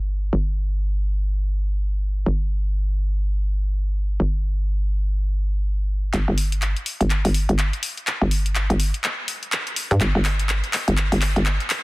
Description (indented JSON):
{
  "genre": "bass house",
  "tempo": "124 BPM",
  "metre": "4/4",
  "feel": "swing 60% on 16ths",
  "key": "unclear",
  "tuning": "A4 = 444 Hz",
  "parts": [
    { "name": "hollow knocking FM bass", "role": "bass", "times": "0.0-11.6 s", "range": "G1 to G2", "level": "-20 LUFS", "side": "equal", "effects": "overdrive" },
    { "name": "garage drum kit", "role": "drums", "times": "6.1-11.8 s", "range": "handclaps, hi-hat", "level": "-24 LUFS", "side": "left 1 dB", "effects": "low-pass filter on snare, low-pass filter on hats" }
  ],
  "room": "digital ambience",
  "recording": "dense, heavily limited modern master",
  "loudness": "-20 LUFS",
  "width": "side -21 dB against mid",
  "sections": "0.0-6.1 A section; 6.1-11.8 B section",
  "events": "build-up 6.1-11.8; drum fill 6.1-11.8",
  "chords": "none",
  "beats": "| 0.33 0.81 1.30 1.78 | 2.27 2.75 3.23 3.72 | 4.20 4.68 5.17 5.65 | 6.14 6.62 7.10 7.59 | 8.07 8.55 9.04 9.52 | 10.01 10.49 10.97 11.46"
}